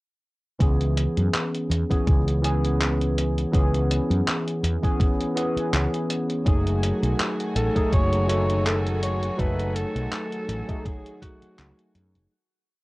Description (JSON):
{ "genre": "vaporwave", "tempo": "82 BPM", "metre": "4/4", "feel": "swing 55% on 16ths", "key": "F# dorian", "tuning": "A4 = 440 Hz", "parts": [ { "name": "barky tine electric piano", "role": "accompaniment", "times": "0.6-12.3 s", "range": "E3 to A4", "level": "-26 LUFS", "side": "equal", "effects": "analog chorus, cassette tape, tape echo" }, { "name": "mellow fretless electric bass", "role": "bass", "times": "0.6-12.3 s", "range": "F#1 to F#2", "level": "-24 LUFS", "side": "equal", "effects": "none" }, { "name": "detuned 8-bit digital drum machine", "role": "drums", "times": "0.6-12.3 s", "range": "handclaps, hi-hat", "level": "-30 LUFS", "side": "equal", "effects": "cassette tape" }, { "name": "electronic kick drum", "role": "drums", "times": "0.6-11.4 s", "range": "none", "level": "-22 LUFS", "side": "equal", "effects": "cassette tape" }, { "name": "clear studio string section", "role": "sustained chords", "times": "6.5-12.3 s", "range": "D#3 to G#5", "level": "-34 LUFS", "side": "equal", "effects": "cassette tape" }, { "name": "growling alto saxophone", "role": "melody", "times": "7.6-11.9 s", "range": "F#4 to C#5", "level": "-29 LUFS", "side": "equal", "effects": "cassette tape" } ], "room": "light reverb", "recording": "home recording on cassette", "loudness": "-21 LUFS", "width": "side -21 dB against mid", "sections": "0.6-12.3 groove", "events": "fade-out 8.4-12.3", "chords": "0.6 C#m7; 6.5 F#m69", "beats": "| 0.61 1.34 2.07 2.81 | 3.54 4.27 5.00 5.73 | 6.46 7.20 7.93 8.66 | 9.39 10.12 10.85 11.59" }